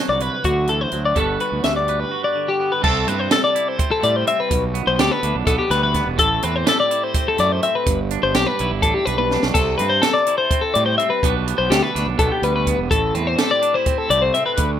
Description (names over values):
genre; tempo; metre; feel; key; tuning
math rock and midwest emo; 250 BPM (eighths); 7/8; straight; G major; A4 = 440 Hz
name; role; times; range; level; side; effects
twangy electric guitar; accompaniment; 0.0-14.8 s; G2 to B4; -26 LUFS; right 14 dB; spring reverb
twelve-string electric guitar; arpeggios; 0.0-14.7 s; F#4 to E5; -18 LUFS; left 4 dB; slapback echo
fuzz fingered electric bass; bass; 0.1-14.8 s; E1 to A2; -24 LUFS; right 1 dB; overdrive
compact cocktail drum kit; drums; 0.2-14.7 s; crash cymbal, hi-hat, kick drum, snare drum, toms; -22 LUFS; right 2 dB; none
room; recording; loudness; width
light reverb; rough home demo mix; -16 LUFS; side -10 dB against mid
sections
0.0-2.8 A section; 2.8-14.8 B section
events
drum fill 9.2-9.5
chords
0.0 D7; 1.2 Gmaj7; 2.8 C6; 4.5 G/B; 6.2 Am7; 7.9 Em7/G; 9.5 C6; 11.2 G/B; 12.9 Am7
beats
0.20 0.44 0.68 0.92 | 1.16 1.40 1.64 1.88 2.12 2.36 2.60 | 2.83 3.07 3.31 3.55 3.79 4.03 4.27 | 4.51 4.75 4.99 5.23 5.47 5.71 5.95 | 6.19 6.43 6.67 6.91 7.15 7.38 7.62 | 7.87 8.11 8.35 8.59 8.82 9.06 9.30 | 9.54 9.78 10.02 10.26 10.50 10.74 10.98 | 11.22 11.46 11.70 11.94 12.18 12.42 12.66 | 12.90 13.14 13.38 13.62 13.86 14.10 14.34 | 14.58